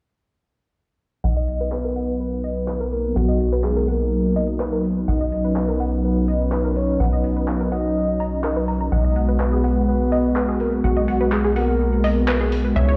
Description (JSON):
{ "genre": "progressive house", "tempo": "125 BPM", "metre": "4/4", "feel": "straight", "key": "B major", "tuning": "A4 = 440 Hz", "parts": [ { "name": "soft octave-layered synth lead", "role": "melody", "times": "1.2-13.0 s", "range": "F#4 to D#5", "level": "-28 LUFS", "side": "equal", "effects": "chorus, delay" }, { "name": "lush unison pad", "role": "sustained chords", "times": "1.2-13.0 s", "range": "C#3 to F#4", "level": "-25 LUFS", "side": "equal", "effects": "chorus" }, { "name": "analog pluck", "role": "arpeggios", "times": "1.2-13.0 s", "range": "G#4 to A#5", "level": "-30 LUFS", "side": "equal", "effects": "chorus, delay" }, { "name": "tight sequencer bass", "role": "bass", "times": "1.2-13.0 s", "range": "B1 to C#2", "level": "-25 LUFS", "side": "equal", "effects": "none" }, { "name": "deep house drum kit", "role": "drums", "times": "1.5-12.6 s", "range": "handclaps, hi-hat", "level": "-34 LUFS", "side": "equal", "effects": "none" }, { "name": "riser", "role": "sound effects", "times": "12.9-13.0 s", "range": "none", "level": "-42 LUFS", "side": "equal", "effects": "none" } ], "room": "light reverb, digital ambience", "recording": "played on a big sound system in a bare room, large studio reverb, low-pass filter", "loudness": "-21 LUFS", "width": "mono", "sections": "1.2-13.0 A section", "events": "filter sweep on synth pluck 1.2-13.0; filter sweep on analog synth pad 1.2-13.0; filter sweep 1.2-13.0", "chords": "1.2 Bmaj7; 8.9 G#m7/B" }